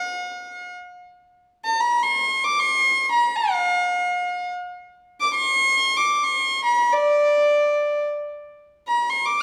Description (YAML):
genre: Arabic maqam ensemble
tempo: free time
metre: none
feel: none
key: unclear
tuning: A4 = 440 Hz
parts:
  - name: rich violin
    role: solo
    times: 0.0-9.4 s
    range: D5 to D6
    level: -21 LUFS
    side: equal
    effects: none
room: wet recital hall reverb, RT60 1.5 s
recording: recorded in a church or concert hall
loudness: -21 LUFS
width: mono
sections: 0.0-8.3 A section; 8.3-9.4 A section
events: none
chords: none